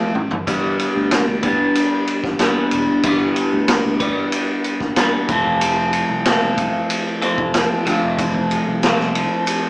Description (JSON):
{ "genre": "psychedelic rock", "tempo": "93 BPM", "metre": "4/4", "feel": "straight", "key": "G mixolydian", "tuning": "A4 = 435 Hz", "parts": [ { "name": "electric guitar through a small old amp", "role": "riff", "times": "0.0-9.7 s", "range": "F3 to B4", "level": "-18 LUFS", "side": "equal", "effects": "phaser" }, { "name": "vintage drum kit", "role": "drums", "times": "0.1-9.6 s", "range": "kick drum, ride cymbal, snare drum, toms", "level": "-20 LUFS", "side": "equal", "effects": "none" }, { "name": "picked electric bass", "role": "bass", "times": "0.2-9.3 s", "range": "E1 to D2", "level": "-27 LUFS", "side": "equal", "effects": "none" }, { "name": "egg shaker", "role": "percussion", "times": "0.5-9.6 s", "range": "none", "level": "-40 LUFS", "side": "right 2 dB", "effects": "none" } ], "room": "light reverb", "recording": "band playing live in one room, small speaker sound", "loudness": "-16 LUFS", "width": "side -24 dB against mid", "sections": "0.0-9.7 A section", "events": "drum fill 0.2-0.5", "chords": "0.5 G; 5.3 F" }